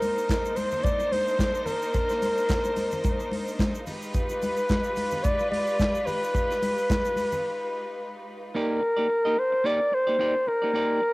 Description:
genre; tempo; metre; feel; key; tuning
disco; 109 BPM; 4/4; swing 56% on 16ths; C minor; A4 = 440 Hz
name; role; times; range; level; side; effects
breathy flugelhorn; melody; 0.0-11.1 s; Bb4 to D5; -25 LUFS; equal; cassette tape, plate reverb, tape echo
clear studio string section; sustained chords; 0.0-8.5 s; Ab3 to C5; -33 LUFS; equal; cassette tape, plate reverb
vintage drum kit; drums; 0.0-7.3 s; handclaps, hi-hat, kick drum, snare drum; -29 LUFS; equal; cassette tape
congas; percussion; 0.0-7.4 s; none; -35 LUFS; left 2 dB; none
egg shaker; percussion; 0.0-7.4 s; none; -48 LUFS; right 5 dB; none
clean electric guitar; accompaniment; 8.5-11.1 s; Bb3 to Eb5; -30 LUFS; right 2 dB; cassette tape, plate reverb
room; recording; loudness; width
moderate studio reverb, RT60 0.6 s; home recording on cassette; -23 LUFS; side -23 dB against mid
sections
0.0-8.5 A section; 8.5-11.1 B section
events
break 7.4-8.5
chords
0.0 Cm9; 3.9 G7b9b13; 8.5 Cm9

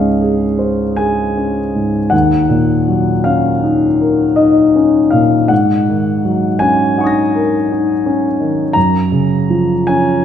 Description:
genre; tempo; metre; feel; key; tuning
classical, impressionist solo piano; 50-57 BPM (dotted quarters); 9/8; rubato; Db major; A4 = 440 Hz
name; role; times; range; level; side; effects
clear concert grand piano; solo; 0.0-10.2 s; Db2 to Bb6; -11 LUFS; left 1 dB; none
room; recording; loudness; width
wet scoring stage reverb, RT60 1.9 s; minimal, uncompressed stereo recording; -11 LUFS; side -9 dB against mid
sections
0.0-10.2 A section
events
none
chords
0.0 Dbmaj7; 2.1 Ebm7; 5.5 Ab9sus4; 8.8 Gbmaj9

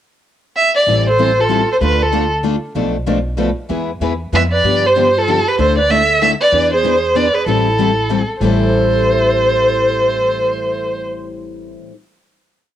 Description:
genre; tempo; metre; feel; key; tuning
acoustic string swing (jazz manouche); 191 BPM; 3/4; swing 60% on 8ths; A minor; A4 = 440 Hz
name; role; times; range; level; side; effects
rich violin; melody; 0.6-2.3, 4.3-11.1 s; A4 to E5; -14 LUFS; equal; cassette tape
picked steel-string acoustic guitar; accompaniment; 0.9-11.9 s; A2 to B4; -20 LUFS; left 8 dB; cassette tape
picked steel-string acoustic guitar; accompaniment; 0.9-11.9 s; A2 to B4; -26 LUFS; right 9 dB; cassette tape
upright bass; bass; 0.9-11.7 s; A1 to G2; -21 LUFS; equal; none
breathy clarinet; second line; 1.1-2.3, 4.3-11.0 s; E4 to B4; -23 LUFS; right 10 dB; cassette tape
room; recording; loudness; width
moderate spring reverb, RT60 1.3 s, small room ambience; home recording on cassette; -12 LUFS; side -11 dB against mid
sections
0.0-0.9 pickup bar; 0.9-8.4 A section; 8.4-10.3 final chord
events
none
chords
0.0 N.C.; 0.9 Am7; 1.8 Dm; 2.8 Bm7b5; 3.7 E; 4.6 G7; 5.6 Dsus2; 6.5 E7; 7.5 Am7

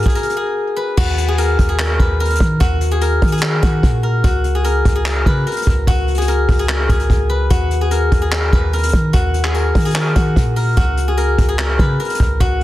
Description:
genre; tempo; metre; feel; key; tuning
hip hop, trap; 147 BPM; 4/4; half-time; Eb minor; A4 = 438 Hz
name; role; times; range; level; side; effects
steel-string zither; melody; 0.0-12.6 s; Gb4 to Cb5; -19 LUFS; left 2 dB; digital delay
clean 808-style bass; bass; 0.0-12.6 s; Cb2 to Eb3; -17 LUFS; equal; none
vintage brush drum kit; drums; 0.0-12.6 s; crash cymbal, handclaps, hi-hat, kick drum; -17 LUFS; equal; none
room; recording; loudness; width
small room ambience; dense, heavily limited modern master; -13 LUFS; side -15 dB against mid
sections
1.0-12.6 A section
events
break 0.2-1.0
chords
0.0 Db7(no3) (rootless); 1.0 Ebm; 4.2 Db5; 7.5 Ebm; 10.8 Db5

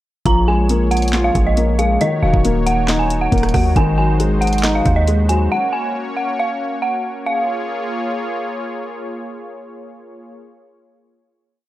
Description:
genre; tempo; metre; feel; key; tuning
hip hop, trap; 137 BPM; 4/4; half-time; Bb minor; A4 = 440 Hz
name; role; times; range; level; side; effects
dark detuned synth bell; melody; 0.3-8.5 s; Eb5 to Bb5; -20 LUFS; right 1 dB; chorus
felt-muted upright piano; accompaniment; 0.3-5.5 s; Eb3 to F4; -19 LUFS; left 2 dB; none
warm analog pad; sustained chords; 0.3-10.3 s; F3 to Db5; -26 LUFS; equal; chorus
hard-hitting 808-style bass; bass; 0.3-5.5 s; Eb1 to Eb2; -18 LUFS; equal; none
trap drum kit; drums; 0.3-5.4 s; handclaps, hi-hat, kick drum, rim click, snare drum; -20 LUFS; equal; none
room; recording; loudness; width
digital ambience; dry, gritty hardware recording; -15 LUFS; side -15 dB against mid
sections
0.3-7.3 hook; 7.3-10.8 final chord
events
none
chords
0.3 Bbm7; 2.0 Ebm7; 3.8 Ab7; 5.5 Gbmaj7; 7.3 Bbm7

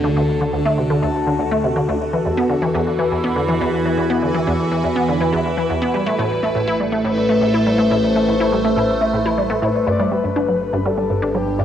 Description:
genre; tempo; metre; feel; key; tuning
ambient, sequencer-driven space music; 122 BPM; 4/4; straight; unclear; A4 = 441 Hz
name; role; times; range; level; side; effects
evolving wavetable pad; sustained chords; 0.0-11.6 s; D3 to B5; -19 LUFS; equal; phaser, built-in reverb
resonant blip pluck; riff; 0.0-11.6 s; D2 to E4; -20 LUFS; equal; analog chorus, ping-pong delay
analog drone; bass; 0.0-11.6 s; G1 to E2; -27 LUFS; equal; chorus
breathy flute-like synth lead; melody; 9.9-11.6 s; G4 to D5; -23 LUFS; left 6 dB; tremolo, lush chorus, cassette tape, ping-pong delay
room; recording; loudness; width
moderate spring reverb, RT60 2.1 s; home recording on cassette; -16 LUFS; side -10 dB against mid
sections
0.0-11.6 A section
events
none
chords
0.0 D; 2.0 Esus2; 5.9 Amadd9; 9.9 G

